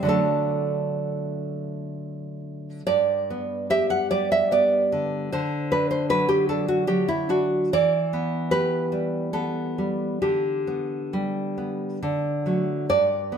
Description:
romantic piece for solo classical guitar; 61-79 BPM; 3/4; rubato; G major; A4 = 439 Hz
nylon-string guitar; solo; 0.0-13.4 s; G2 to F#5; -22 LUFS; right 1 dB
wet stone room reverb, RT60 1.5 s; band playing live in one room; -22 LUFS; side -7 dB against mid
0.0-2.9 A section; 2.9-13.4 B section
0.1 D; 2.9 G; 5.3 D; 7.7 Em7; 10.2 G/D; 12.0 D
| 0.06 1.01 1.94 | 2.87 3.70 4.50 | 5.31 6.09 6.88 | 7.73 8.52 9.34 | 10.22 11.14 12.03 | 12.90

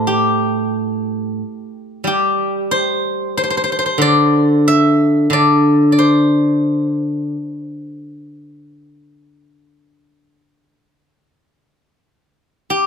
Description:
chinese traditional, Chinese solo plucked strings; 90 BPM; 4/4; uneven beats, rubato; G zhi mode; A4 = 440 Hz
steel-string zither; solo; 0.0-8.0, 12.7-12.9 s; A2 to E5; -14 LUFS; equal
light reverb; close, detailed microphones; -13 LUFS; side -7 dB against mid
0.0-12.9 A section
| 0.07 0.74 1.41 2.06 | 2.71 3.36 4.00 4.65 | 5.31 5.98 6.65 7.34 | 8.05 8.74 9.42 10.09 | 10.74 11.38 12.03 12.67

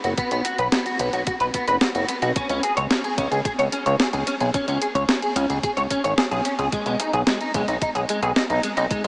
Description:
synthwave; 110 BPM; 4/4; straight; A4 = 440 Hz
clean electric guitar; riff; 0.0-9.1 s; G#3 to C#5; -23 LUFS; equal; ensemble chorus, diffuse ambient delay
chorused synth bass; bass; 0.0-9.1 s; F#1 to C#2; -24 LUFS; equal; tube saturation, sidechain pumping
clean 12-bit digital drum machine; drums; 0.0-9.1 s; hi-hat, snare drum; -25 LUFS; equal
electronic kick drum; drums; 0.2-9.0 s; -28 LUFS; equal
wet huge ambient reverb, RT60 7.2 s; dreamy mix soaked in reverb, small speaker sound; -19 LUFS; side -28 dB against mid
0.0-9.1 A section
0.0 B5; 2.4 C#5; 6.7 G#m/B
| 0.18 0.72 1.27 1.82 | 2.36 2.91 3.45 4.00 | 4.54 5.09 5.63 6.18 | 6.72 7.27 7.82 8.36 | 8.91

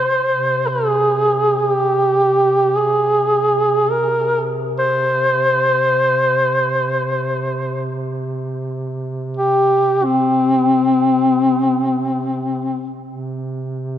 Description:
caucasian folk, Caucasian lament; free time; A4 = 439 Hz
mellow duduk; melody; 0.0-12.9 s; C4 to C5; -15 LUFS; equal
dark duduk; drone; 0.0-14.0 s; C3; -25 LUFS; right 2 dB
wet church reverb, RT60 3.4 s; dark, warm production; -15 LUFS; side -10 dB against mid
0.0-13.1 A section
free time

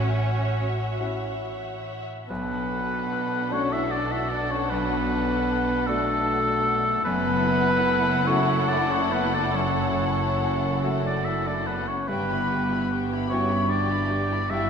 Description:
cinematic; 46-52 BPM (dotted quarters); 6/8; rubato; B minor; A4 = 440 Hz
muted studio violin section; melody; 0.0-14.7 s; F#5 to B5; -34 LUFS; left 4 dB
muted studio violin section; second line; 0.0-14.7 s; F#4 to E5; -34 LUFS; left 5 dB
clear concert grand piano; accompaniment; 0.0-14.7 s; B1 to F#4; -32 LUFS; left 1 dB
muted studio viola section; accompaniment; 0.0-14.7 s; D4 to G4; -34 LUFS; right 2 dB
muted studio cello section; bass; 0.0-14.7 s; F#2 to C#4; -33 LUFS; right 3 dB
muted symphonic double bass section; bass; 0.0-14.7 s; F#1 to B1; -30 LUFS; right 2 dB
warm oboe; second line; 2.3-14.7 s; A4 to E5; -26 LUFS; left 1 dB
mellow French horn section; sustained chords; 2.3-14.7 s; A3 to E4; -29 LUFS; equal
wet scoring stage reverb, RT60 1.5 s; -22 LUFS; side -6 dB against mid
0.0-2.3 A section; 2.3-14.7 A section
0.0 A6; 2.3 Bm7; 7.0 F#m7; 12.1 Emadd9/G
1.00 | 2.29 3.52 | 4.70 5.87 | 7.05 8.27 | 9.53 10.81 | 12.08 13.30 | 14.51

